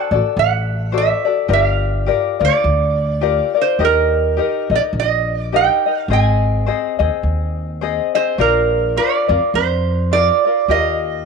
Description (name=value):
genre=Hawaiian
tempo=105 BPM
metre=4/4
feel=swing 58% on 8ths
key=Eb major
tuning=A4 = 440 Hz
part: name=lap resonator guitar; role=melody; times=0.0-11.3 s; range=Bb4 to Ab5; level=-18 LUFS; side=right 12 dB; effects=none
part: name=tenor ukulele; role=accompaniment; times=0.0-11.3 s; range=C4 to Eb5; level=-19 LUFS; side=left 13 dB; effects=none
part: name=upright bass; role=bass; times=0.1-11.3 s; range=G1 to F2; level=-20 LUFS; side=equal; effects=none
room=light reverb, studio reverb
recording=1960s-style stereo with parts hard left and right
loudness=-14 LUFS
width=side -5 dB against mid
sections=0.0-11.3 A section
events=none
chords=0.0 D7; 1.5 Gm7; 3.8 Eb; 6.1 Ab; 8.4 Bbadd9; 10.7 Ebadd9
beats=0.36 0.93 | 1.50 2.08 2.65 3.22 | 3.80 4.37 4.94 5.52 | 6.09 6.66 7.24 7.81 | 8.38 8.96 9.53 10.11 | 10.68